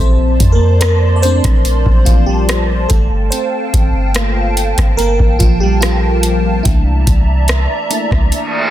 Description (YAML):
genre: contemporary R&B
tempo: 72 BPM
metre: 4/4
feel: straight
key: unclear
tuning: A4 = 440 Hz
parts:
  - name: FM electric piano with soft pad layer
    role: accompaniment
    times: 0.0-8.7 s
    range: E3 to D5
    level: -18 LUFS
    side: equal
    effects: chorus, phaser
  - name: hollow soft pad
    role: sustained chords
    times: 0.0-8.7 s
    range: D5 to C6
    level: -22 LUFS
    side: right 1 dB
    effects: ensemble chorus
  - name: clean 808-style bass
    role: bass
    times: 0.0-8.3 s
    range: G1 to F2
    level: -14 LUFS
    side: equal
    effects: none
  - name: booming analog drum machine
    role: drums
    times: 0.4-8.5 s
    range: hi-hat, kick drum, rim click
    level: -14 LUFS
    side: equal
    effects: soft clipping on snare
  - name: reverse cymbal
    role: sound effects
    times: 8.4-8.7 s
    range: none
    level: -16 LUFS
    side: right 1 dB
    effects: none
room: digital ambience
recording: dense, heavily limited modern master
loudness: -10 LUFS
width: side -13 dB against mid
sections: 0.0-8.7 A section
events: FM electric piano solo 0.0-8.7; kick muted 8.3-8.7; reverse cymbal 8.4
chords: 0.0 Bbmaj9; 2.9 Gm9; 6.7 C13